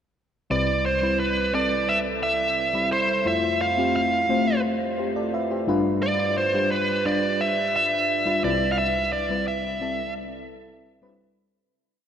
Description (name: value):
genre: pop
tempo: 87 BPM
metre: 4/4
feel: straight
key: C major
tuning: A4 = 444 Hz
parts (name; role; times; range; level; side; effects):
- smooth overdriven lead guitar; melody; 0.5-10.1 s; B4 to F5; -23 LUFS; right 1 dB; none
- mellow FM electric piano; accompaniment; 0.5-11.6 s; C2 to B5; -25 LUFS; left 1 dB; chorus, phaser
room: wet cathedral reverb, RT60 6.2 s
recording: dreamy mix soaked in reverb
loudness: -21 LUFS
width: side -8 dB against mid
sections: 0.5-11.5 chorus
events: fade-out 8.8-11.5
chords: 0.5 Cmaj7; 3.3 Fmaj7; 5.7 G7; 8.4 Cmaj7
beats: | 0.50 1.19 1.88 2.57 | 3.26 3.95 4.64 5.33 | 6.02 6.71 7.40 8.09 | 8.78 9.47 10.16 10.85